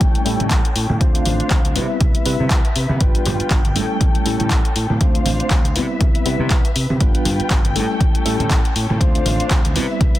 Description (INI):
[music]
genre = filtered disco house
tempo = 120 BPM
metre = 4/4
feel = swing 57% on 16ths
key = D dorian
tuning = A4 = 441 Hz
[part]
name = tine electric piano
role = accompaniment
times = 0.0-10.2 s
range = G3 to C5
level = -24 LUFS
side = equal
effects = medium stereo tremolo, phaser, sidechain pumping, low-pass filter
[part]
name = dark studio string section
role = sustained chords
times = 0.0-10.2 s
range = C#4 to G5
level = -26 LUFS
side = left 3 dB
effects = sidechain pumping, low-pass filter
[part]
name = modern bright fingered electric bass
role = bass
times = 0.0-10.2 s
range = G1 to C3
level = -23 LUFS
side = equal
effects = sidechain pumping, low-pass filter
[part]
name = electronic kick drum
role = drums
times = 0.0-10.1 s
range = none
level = -17 LUFS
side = equal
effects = none
[part]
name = punchy analog drum machine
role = drums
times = 0.0-10.2 s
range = handclaps, hi-hat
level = -24 LUFS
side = left 1 dB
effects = sidechain pumping on hats, sidechain pumping on cymbals
[part]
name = congas and tube shaker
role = percussion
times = 0.0-10.2 s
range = none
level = -26 LUFS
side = right 2 dB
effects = sidechain pumping on perc, low-pass filter on perc
[sound]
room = little or no reverb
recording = dense, heavily limited modern master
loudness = -15 LUFS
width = side -15 dB against mid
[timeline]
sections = 0.0-10.2 A section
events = filter sweep 0.0-10.2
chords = 0.0 A7; 1.0 Dm7; 1.8 Cmaj7; 3.0 G7; 3.8 A7; 5.0 Dm7; 5.8 Cmaj7; 7.0 G7; 7.8 A7; 9.0 Dm7